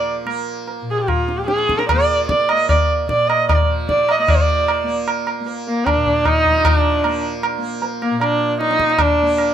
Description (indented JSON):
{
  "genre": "indian classical, Hindustani",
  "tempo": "152 BPM",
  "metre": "3/4",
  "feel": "straight",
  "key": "unclear",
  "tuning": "A4 = 445 Hz",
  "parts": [
    { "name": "dark sarangi", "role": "melody", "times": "0.0-9.5 s", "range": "Bb3 to Eb5", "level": "-17 LUFS", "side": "right 1 dB", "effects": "none" },
    { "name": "tanpura", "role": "drone", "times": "0.0-9.5 s", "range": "Bb2 to Bb3", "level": "-26 LUFS", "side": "right 1 dB", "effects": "none" },
    { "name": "tabla", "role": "percussion", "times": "0.3-9.5 s", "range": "none", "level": "-20 LUFS", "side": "equal", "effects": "none" }
  ],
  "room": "little or no reverb",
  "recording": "close, detailed microphones",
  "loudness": "-15 LUFS",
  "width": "side -9 dB against mid",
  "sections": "0.0-4.3 A section; 4.3-9.5 B section",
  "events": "speeding up 0.0-9.5",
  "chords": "none",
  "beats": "0.27 | 0.68 1.08 1.48 | 1.89 2.29 2.69 | 3.09 3.49 3.89 | 4.29 4.68 5.08 | 5.47 5.87 6.26 | 6.65 7.05 7.44 | 7.83 8.21 8.60 | 8.99 9.38"
}